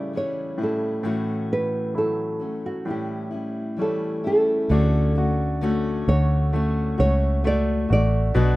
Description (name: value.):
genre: pop ballad.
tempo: 66 BPM.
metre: 4/4.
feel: straight.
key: D major.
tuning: A4 = 440 Hz.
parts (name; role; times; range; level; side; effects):
nylon-string guitar; melody; 0.0-8.6 s; F#4 to D5; -25 LUFS; right 1 dB; none.
clear concert grand piano; accompaniment; 0.0-8.6 s; A2 to F#4; -29 LUFS; right 1 dB; none.
fingerpicked steel-string acoustic guitar; arpeggios; 0.0-8.6 s; A2 to F#4; -28 LUFS; left 4 dB; none.
vintage muted fingered electric bass; bass; 4.7-8.6 s; A1 to D2; -20 LUFS; equal; none.
room: small room ambience.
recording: rough home demo mix.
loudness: -20 LUFS.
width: side -18 dB against mid.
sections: 0.0-4.7 A section; 4.7-8.6 B section.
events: none.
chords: 0.0 A7; 1.0 F#m7/A; 2.9 A7; 4.7 Dmaj7.